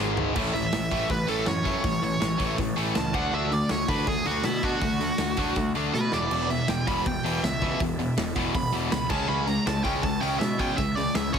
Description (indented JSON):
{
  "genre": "punk rock",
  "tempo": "161 BPM",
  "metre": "4/4",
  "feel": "straight",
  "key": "unclear",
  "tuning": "A4 = 440 Hz",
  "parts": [
    { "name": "distorted electric guitar", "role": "riff", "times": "0.0-11.4 s", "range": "E2 to D4", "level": "-31 LUFS", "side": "right 12 dB", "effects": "overdrive" },
    { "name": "tight distorted guitar", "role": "riff", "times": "0.0-11.4 s", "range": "E2 to D4", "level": "-29 LUFS", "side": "left 12 dB", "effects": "distortion" },
    { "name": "fuzz picked electric bass", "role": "bass", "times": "0.0-11.4 s", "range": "E1 to B2", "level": "-31 LUFS", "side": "equal", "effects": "overdrive" },
    { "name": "big rock drum kit", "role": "drums", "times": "0.2-11.4 s", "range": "crash cymbal, hi-hat, kick drum, snare drum, toms", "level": "-31 LUFS", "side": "equal", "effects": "none" },
    { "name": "biting overdriven guitar", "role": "melody", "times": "0.5-11.4 s", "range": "E4 to B5", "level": "-29 LUFS", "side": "right 2 dB", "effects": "tape echo" }
  ],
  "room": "light reverb",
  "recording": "heavily compressed radio sound",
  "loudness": "-23 LUFS",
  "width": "side -7 dB against mid",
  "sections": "0.4-11.4 A section",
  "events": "drum fill 0.0-0.4, 5.9-6.3; overdriven electric guitar solo 0.4-11.4",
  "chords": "0.0 G#5; 0.4 A; 3.1 D; 6.1 E5; 9.1 C#5"
}